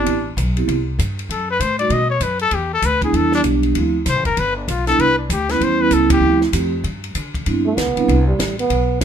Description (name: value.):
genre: jazz, small-group swing and bop.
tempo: 194 BPM.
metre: 4/4.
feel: swing 62% on 8ths.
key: C major.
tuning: A4 = 437 Hz.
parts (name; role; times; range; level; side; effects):
clear trumpet; melody; 0.0-6.4 s; D4 to Eb5; -19 LUFS; left 4 dB; none.
vibraphone with soft mallets; accompaniment; 0.0-8.1 s; F3 to G4; -18 LUFS; right 4 dB; none.
upright bass; bass; 0.0-9.0 s; F1 to D3; -21 LUFS; equal; none.
compact cocktail drum kit; drums; 0.1-9.0 s; hi-hat, kick drum, ride cymbal, snare drum; -26 LUFS; left 1 dB; none.
breathy trombone; second line; 7.7-9.0 s; G3 to B3; -19 LUFS; right 5 dB; none.
room: light reverb.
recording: minimal, uncompressed stereo recording.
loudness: -15 LUFS.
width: side -8 dB against mid.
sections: 0.0-7.5 A section; 7.5-9.0 B section.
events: band accent 6.1; trombone solo 7.5-9.0.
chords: 0.1 Am7; 1.3 F#dim7; 1.9 B5; 2.5 Em7; 3.8 Dm7; 4.4 G6; 5.0 Cmaj9; 5.6 C#m7b5; 6.2 Dm7; 6.8 G5; 7.5 Cmaj9.